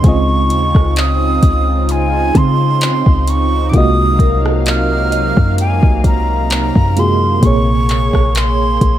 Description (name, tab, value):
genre	contemporary R&B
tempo	65 BPM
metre	4/4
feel	swing 54% on 16ths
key	Db major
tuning	A4 = 439 Hz
part	breathy concert flute	melody	0.0-9.0 s	Ab5 to F6	-18 LUFS	right 2 dB	none
part	FM electric piano with auto-pan	accompaniment	0.0-9.0 s	Bb2 to Eb5	-19 LUFS	right 2 dB	none
part	warm analog pad	sustained chords	0.0-9.0 s	C3 to F5	-20 LUFS	right 1 dB	chorus, sidechain pumping
part	clean 808-style bass	bass	0.0-9.0 s	Bb1 to Db3	-15 LUFS	equal	none
part	smooth R&B drum kit	drums	0.0-9.0 s	handclaps, hi-hat, kick drum, rim click	-15 LUFS	equal	none
part	soft synth bell	texture	0.0-7.8 s	C4 to Ab5	-27 LUFS	left 2 dB	chorus, phaser, tape echo
room	little or no reverb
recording	none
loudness	-11 LUFS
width	side -12 dB against mid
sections	0.0-9.0 A section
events	none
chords	0.0 Dbmaj9; 3.7 Ab13/C; 7.4 Bbm9